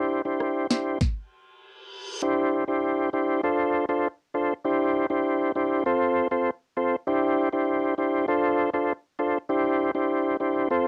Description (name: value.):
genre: dancehall.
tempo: 99 BPM.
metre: 4/4.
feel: straight.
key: unclear.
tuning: A4 = 440 Hz.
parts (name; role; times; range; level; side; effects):
tonewheel organ; accompaniment; 0.0-10.9 s; C4 to C5; -25 LUFS; equal; chorus vibrato, low-pass filter.
afro-pop drum kit; drums; 0.4-1.2 s; kick drum, rim click, snare drum; -27 LUFS; equal; cassette tape.
reverse cymbal; sound effects; 1.5-2.2 s; none; -40 LUFS; equal; none.
room: light reverb.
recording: home recording on cassette.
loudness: -25 LUFS.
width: mono.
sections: 0.0-2.2 A section; 2.2-10.9 B section.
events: filter sweep on tonewheel organ 0.0-2.2; stop 1.0-2.2; reverse cymbal 1.5-2.2.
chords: 0.0 Cadd9; 1.0 N.C.; 2.2 Cadd9; 3.4 Dm7; 4.6 Cadd9; 5.9 F; 7.1 Cadd9; 8.3 Dm7; 9.5 Cadd9.